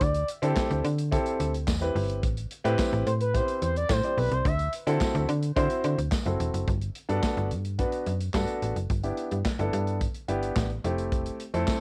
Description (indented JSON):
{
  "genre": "early-eighties boogie funk",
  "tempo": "108 BPM",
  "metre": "4/4",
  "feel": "straight",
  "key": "G major",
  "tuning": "A4 = 440 Hz",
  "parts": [
    { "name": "expressive synth lead", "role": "melody", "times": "0.0-4.7 s", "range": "B4 to E5", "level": "-33 LUFS", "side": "equal", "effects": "chorus, cassette tape, analog delay" },
    { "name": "slap-like FM bass", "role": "bass", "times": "0.0-11.7 s", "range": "E1 to D3", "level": "-30 LUFS", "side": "equal", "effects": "none" },
    { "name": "modern studio drum kit", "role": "drums", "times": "0.0-11.8 s", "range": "handclaps, hi-hat, kick drum, snare drum", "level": "-33 LUFS", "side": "equal", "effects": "cassette tape" },
    { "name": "warm concert grand piano", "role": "accompaniment", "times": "0.4-11.8 s", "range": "A3 to D5", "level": "-32 LUFS", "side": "equal", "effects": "cassette tape" },
    { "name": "tambourine", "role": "percussion", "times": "0.6-11.8 s", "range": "none", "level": "-45 LUFS", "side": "equal", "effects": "none" }
  ],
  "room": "light reverb",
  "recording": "home recording on cassette",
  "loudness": "-27 LUFS",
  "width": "mono",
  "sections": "0.0-6.7 A section; 6.7-11.8 B section",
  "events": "analog synth lead solo 0.0-6.7",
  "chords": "0.0 D7sus4; 2.2 Am9; 4.5 D9; 6.7 Gmaj9; 8.9 G69; 10.8 Fmaj7",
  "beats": "| 0.01 0.57 1.12 1.68 | 2.23 2.79 3.34 3.90 | 4.46 5.01 5.57 6.12 | 6.68 7.23 7.79 8.34 | 8.90 9.46 10.01 10.57 | 11.12 11.68"
}